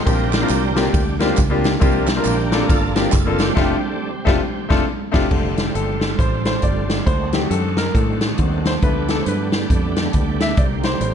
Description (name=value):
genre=uptempo gospel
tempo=137 BPM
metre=4/4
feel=swing 61% on 8ths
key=F major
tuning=A4 = 439 Hz
part: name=bright tonewheel organ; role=sustained chords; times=0.0-11.1 s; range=D3 to C5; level=-26 LUFS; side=right 4 dB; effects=overdrive, chorus vibrato, slow rotary speaker
part: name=clear concert grand piano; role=accompaniment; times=0.1-11.1 s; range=Bb2 to E5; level=-22 LUFS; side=left 3 dB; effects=none
part: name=fingered electric bass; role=bass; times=0.1-11.1 s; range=F1 to A2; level=-22 LUFS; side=equal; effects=none
part: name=swinging big-band drum kit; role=drums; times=0.1-11.1 s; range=crash cymbal, hi-hat, kick drum, ride cymbal, snare drum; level=-19 LUFS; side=equal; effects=none
part: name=tambourine and handclaps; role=percussion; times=0.1-3.5 s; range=none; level=-32 LUFS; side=right 6 dB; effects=none
room=light reverb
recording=dark, warm production, nothing above 10.4 kHz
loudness=-16 LUFS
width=side -8 dB against mid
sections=0.0-5.3 A section; 5.3-11.1 B section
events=tonewheel organ solo 0.0-5.3; band accent 3.6-5.3; grand piano solo 5.3-11.1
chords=0.1 Bb69; 1.8 C9sus4; 3.6 F69; 7.1 D7b9; 8.8 G9/D; 10.6 C7(no3)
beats=| 0.07 0.50 0.94 1.38 | 1.82 2.25 2.69 3.13 | 3.57 4.00 4.44 4.88 | 5.32 5.76 6.20 6.63 | 7.07 7.51 7.95 8.39 | 8.83 9.27 9.70 10.14 | 10.58 11.02